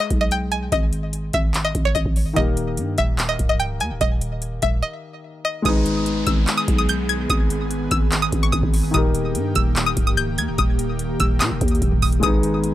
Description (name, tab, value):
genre	hip hop, trap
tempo	146 BPM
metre	4/4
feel	half-time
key	G# harmonic minor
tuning	A4 = 442 Hz
part	string-like resonator pluck	melody	0.0-12.6 s	C#5 to G#6	-23 LUFS	left 1 dB	chorus, tape echo
part	dark concert grand piano	accompaniment	0.0-12.7 s	D#3 to B4	-27 LUFS	left 3 dB	none
part	growling 808-style bass	bass	0.1-12.7 s	C#1 to A#2	-24 LUFS	equal	none
part	booming analog drum machine	drums	0.1-12.7 s	handclaps, hi-hat, kick drum	-21 LUFS	equal	overdrive
part	airy breathy pad	sustained chords	5.7-12.7 s	D#3 to G#4	-27 LUFS	right 1 dB	chorus
part	downlifter	sound effects	5.7-8.9 s	none	-34 LUFS	equal	none
room	digital ambience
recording	dry, gritty hardware recording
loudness	-18 LUFS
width	side -14 dB against mid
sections	0.0-5.7 A section; 5.7-12.7 B section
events	break 4.8-5.7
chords	0.0 G#m; 2.4 D#; 5.7 G#m; 8.9 D#; 12.2 G#m